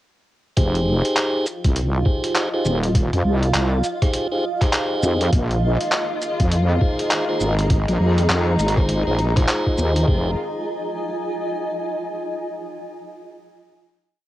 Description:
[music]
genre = glitch hop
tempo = 101 BPM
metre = 4/4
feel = swing 61% on 16ths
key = F minor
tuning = A4 = 440 Hz
[part]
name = tonewheel organ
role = stabs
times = 0.6-10.3 s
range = Eb4 to C5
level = -25 LUFS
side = equal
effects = stopped rotary speaker, sidechain pumping, cassette tape, analog delay
[part]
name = wobble bass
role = bass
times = 0.6-10.4 s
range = Eb1 to F2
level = -19 LUFS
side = equal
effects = chorus, tube saturation
[part]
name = boom bap sampler-style drum kit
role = drums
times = 0.6-10.1 s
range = handclaps, hi-hat, rim click, shaker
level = -24 LUFS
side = equal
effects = cassette tape
[part]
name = electronic kick drum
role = drums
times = 0.6-10.2 s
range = none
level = -19 LUFS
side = equal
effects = cassette tape
[part]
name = granular cloud pad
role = texture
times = 1.3-12.4 s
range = F4 to Bb5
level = -26 LUFS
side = right 1 dB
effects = built-in reverb, sidechain pumping, cassette tape
[part]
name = rich studio string section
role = sustained chords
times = 5.3-10.4 s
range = Eb3 to F4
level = -30 LUFS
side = left 2 dB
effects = sidechain pumping, cassette tape
[sound]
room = light reverb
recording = home recording on cassette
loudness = -18 LUFS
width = side -14 dB against mid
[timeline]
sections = 0.6-10.1 drop; 10.1-12.5 final chord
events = drop 0.6-10.1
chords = 0.6 Fm7; 5.3 Bb7sus4; 10.1 Fm7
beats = | 0.57 1.17 1.76 2.35 | 2.95 3.54 4.14 4.73 | 5.32 5.92 6.51 7.11 | 7.70 8.29 8.89 9.48 | 10.08 10.67 11.27 11.86

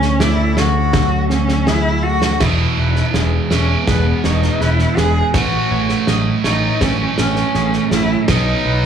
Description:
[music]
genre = post-rock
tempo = 82 BPM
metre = 4/4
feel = straight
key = E major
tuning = A4 = 440 Hz
[part]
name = rich cello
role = melody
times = 0.0-8.9 s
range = B3 to G#4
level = -20 LUFS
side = left 1 dB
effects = digital delay
[part]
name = clean electric guitar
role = arpeggios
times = 0.0-8.9 s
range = A2 to E4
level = -24 LUFS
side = left 4 dB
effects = wide subtle chorus, digital delay
[part]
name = twangy electric guitar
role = arpeggios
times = 0.0-8.9 s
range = G#4 to D#5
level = -29 LUFS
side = right 1 dB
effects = wide subtle chorus, digital delay
[part]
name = growling fingered electric bass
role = bass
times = 0.0-8.9 s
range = E1 to D2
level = -18 LUFS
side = equal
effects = overdrive
[part]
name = loose indie drum kit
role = drums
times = 0.0-8.9 s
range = crash cymbal, kick drum, snare drum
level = -21 LUFS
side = right 1 dB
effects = none
[part]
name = cranked stack guitar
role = riff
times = 2.4-8.9 s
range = E2 to B3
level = -19 LUFS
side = right 9 dB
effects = overdrive
[sound]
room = light reverb, small room ambience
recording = none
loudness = -13 LUFS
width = side -8 dB against mid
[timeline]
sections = 0.0-2.4 A section; 2.4-8.9 B section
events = none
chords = 0.0 Dmaj7; 2.4 Emaj7; 5.3 A6; 8.3 B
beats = 0.20 0.94 1.67 | 2.41 3.14 3.88 4.61 | 5.34 6.08 6.81 7.55 | 8.28

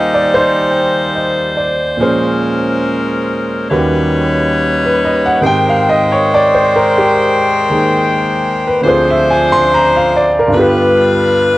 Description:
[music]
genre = jazz ballad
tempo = 70 BPM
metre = 4/4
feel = swing 68% on 8ths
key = unclear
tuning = A4 = 439 Hz
[part]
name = warm concert grand piano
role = accompaniment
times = 0.0-11.6 s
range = D2 to C6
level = -12 LUFS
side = right 1 dB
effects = none
[part]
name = bright saxophone section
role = sustained chords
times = 0.0-11.6 s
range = F3 to G5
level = -14 LUFS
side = left 2 dB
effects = none
[sound]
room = moderate booth ambience, RT60 0.3 s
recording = home recording on cassette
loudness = -10 LUFS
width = side -17 dB against mid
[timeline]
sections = 0.0-11.6 A section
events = none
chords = 0.0 Eb6; 2.0 Bbm9; 3.7 Eb7alt; 5.4 Abmaj9; 8.8 Dm7b5; 10.5 G7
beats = 0.29 1.14 | 2.00 2.85 3.71 4.56 | 5.42 6.27 7.13 7.98 | 8.83 9.68 10.53 11.38

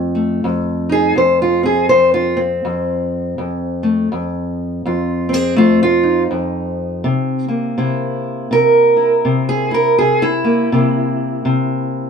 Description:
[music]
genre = acoustic country blues, solo or duo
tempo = 82 BPM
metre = 4/4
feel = swing 60% on 8ths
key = F major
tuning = A4 = 441 Hz
[part]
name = fingerpicked steel-string acoustic guitar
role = solo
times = 0.0-12.1 s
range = F2 to C5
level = -14 LUFS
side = equal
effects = none
[sound]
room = wet studio reverb, RT60 0.5 s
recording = band playing live in one room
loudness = -14 LUFS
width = side -6 dB against mid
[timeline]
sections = 0.0-12.1 A section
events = steel-string acoustic guitar solo 0.0-12.1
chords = 0.0 F7; 7.1 C7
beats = 0.43 | 1.17 1.90 2.64 3.38 | 4.12 4.85 5.59 6.32 | 7.06 7.79 8.53 9.26 | 9.99 10.72 11.45

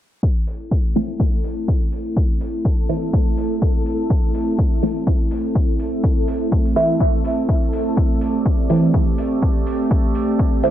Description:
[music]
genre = dub techno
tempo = 124 BPM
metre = 4/4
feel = swing 56% on 16ths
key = A minor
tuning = A4 = 442 Hz
[part]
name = airy breathy pad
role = sustained chords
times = 0.6-10.7 s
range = A3 to G4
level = -24 LUFS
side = right 1 dB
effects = chorus, sidechain pumping
[part]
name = electronic kick drum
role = drums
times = 0.2-10.5 s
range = none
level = -18 LUFS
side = equal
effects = overdrive
[part]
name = bubbling stepped-filter texture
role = texture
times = 0.9-10.7 s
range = A3 to D5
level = -29 LUFS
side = right 1 dB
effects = chorus, built-in reverb, sidechain pumping
[part]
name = electronic hi-hat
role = drums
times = 0.5-10.7 s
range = none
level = -46 LUFS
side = right 1 dB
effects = none
[part]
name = filtered dub chord stab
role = stabs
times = 1.0-10.7 s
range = E3 to E4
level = -20 LUFS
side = right 1 dB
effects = phaser, sidechain pumping, dub echo
[sound]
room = light reverb, digital ambience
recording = low-pass filter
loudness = -16 LUFS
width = side -11 dB against mid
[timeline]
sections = 0.2-10.7 A section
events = filter sweep on synth stab 0.2-10.7; filter sweep on analog synth pad 0.2-10.7; filter sweep 0.2-10.7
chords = 0.2 Am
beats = | 0.23 0.71 1.20 1.68 | 2.17 2.65 3.13 3.62 | 4.10 4.59 5.07 5.55 | 6.04 6.52 7.00 7.49 | 7.97 8.46 8.94 9.42 | 9.91 10.39

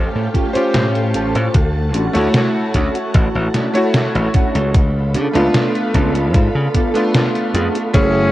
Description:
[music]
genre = vaporwave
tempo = 75 BPM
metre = 4/4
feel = straight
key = unclear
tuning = A4 = 440 Hz
[part]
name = bright electric grand piano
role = accompaniment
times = 0.0-8.3 s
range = A3 to C#5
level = -18 LUFS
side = equal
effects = analog chorus, tape echo
[part]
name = soft string machine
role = sustained chords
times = 0.0-8.3 s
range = A3 to E6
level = -26 LUFS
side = equal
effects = ensemble chorus
[part]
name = glassy slap bass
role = bass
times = 0.0-8.3 s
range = F#1 to C#3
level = -18 LUFS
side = equal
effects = none
[part]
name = mellow electric guitar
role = riff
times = 0.3-7.8 s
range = B3 to A4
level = -26 LUFS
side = right 2 dB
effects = ensemble chorus, vintage 12-bit sampler grit, tape echo
[part]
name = detuned 8-bit digital drum machine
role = drums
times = 0.3-8.1 s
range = hi-hat, snare drum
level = -20 LUFS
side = equal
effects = none
[part]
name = electronic kick drum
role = drums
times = 0.3-8.1 s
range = none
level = -15 LUFS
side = equal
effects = none
[part]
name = clear tenor saxophone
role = melody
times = 7.9-8.3 s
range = C#4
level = -17 LUFS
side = equal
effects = none
[sound]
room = light reverb, digital ambience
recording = worn, warbling old tape, cassette tape, warbly pitch drift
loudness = -14 LUFS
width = side -15 dB against mid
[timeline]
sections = 0.0-7.9 A section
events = none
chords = 0.0 A7alt; 1.5 Dmaj7; 4.7 C#7b9b13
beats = 0.74 | 1.54 2.34 3.14 3.94 | 4.74 5.54 6.34 7.14 | 7.94

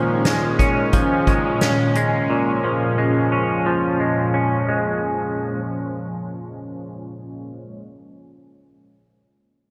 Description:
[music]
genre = dream pop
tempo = 88 BPM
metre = 4/4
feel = straight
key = Bb minor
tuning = A4 = 440 Hz
[part]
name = lush unison pad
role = sustained chords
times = 0.0-7.7 s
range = Bb2 to Db4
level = -24 LUFS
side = equal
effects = chorus, phaser, low-pass filter
[part]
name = direct-recorded clean electric guitar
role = arpeggios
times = 0.0-5.6 s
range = Bb2 to Db4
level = -24 LUFS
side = equal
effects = lush chorus, low-pass filter, delay
[part]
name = vibraphone with medium mallets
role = texture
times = 0.0-0.6 s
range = none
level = barely audible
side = none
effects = none
[part]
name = soft-mallet drum kit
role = drums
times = 0.2-2.1 s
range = hi-hat, kick drum, snare drum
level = -23 LUFS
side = equal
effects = gated reverb
[sound]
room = wet lush hall reverb, RT60 2.9 s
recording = bright 1980s-style digital production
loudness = -20 LUFS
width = mono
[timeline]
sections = 0.0-7.8 A section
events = filter sweep 0.0-7.8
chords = 0.0 Eb9sus4/Bb; 2.3 Bbm7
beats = 0.25 0.93 1.62 | 2.30 2.98 3.66 4.34 | 5.03 5.71 6.39 7.07

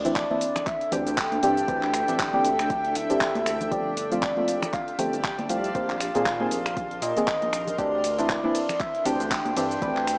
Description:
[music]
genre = deep house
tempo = 118 BPM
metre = 4/4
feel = swing 57% on 16ths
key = D minor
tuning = A4 = 441 Hz
[part]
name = breathy flute-like synth lead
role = melody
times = 0.0-10.2 s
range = D5 to G5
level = -27 LUFS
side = equal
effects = lush chorus, cassette tape, analog delay
[part]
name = deep mellow chord stab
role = stabs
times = 0.0-10.0 s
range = Eb3 to C5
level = -27 LUFS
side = equal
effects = chorus, sidechain pumping, analog delay
[part]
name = rubbery square bass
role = bass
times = 0.0-10.2 s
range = D1 to Bb2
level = -34 LUFS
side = equal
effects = tube saturation, sidechain pumping
[part]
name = deep house drum kit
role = drums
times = 0.0-10.2 s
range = finger snaps, handclaps, hi-hat, ride cymbal, shaker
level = -30 LUFS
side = equal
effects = overdrive
[part]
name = sub drop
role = sound effects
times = 0.4-1.7 s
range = none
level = barely audible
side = none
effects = none
[part]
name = granular cloud pad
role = texture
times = 0.0-10.2 s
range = D4 to C6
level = -33 LUFS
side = equal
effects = built-in reverb, sidechain pumping
[part]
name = electronic kick drum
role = drums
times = 0.2-9.9 s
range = none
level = -35 LUFS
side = equal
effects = overdrive
[part]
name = congas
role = percussion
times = 0.3-9.5 s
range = none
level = -36 LUFS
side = equal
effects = none
[sound]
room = light reverb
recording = dry, gritty hardware recording, vinyl crackle, small speaker sound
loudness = -22 LUFS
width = side -36 dB against mid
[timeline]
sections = 0.0-10.2 A section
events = impact 0.0-1.7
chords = 0.0 D9sus4; 3.7 G9sus4; 5.8 Bb9sus4; 7.8 D9sus4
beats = 0.16 0.67 1.17 | 1.68 2.19 2.70 3.21 | 3.72 4.22 4.73 5.24 | 5.75 6.26 6.77 7.28 | 7.78 8.29 8.80 9.31 | 9.82

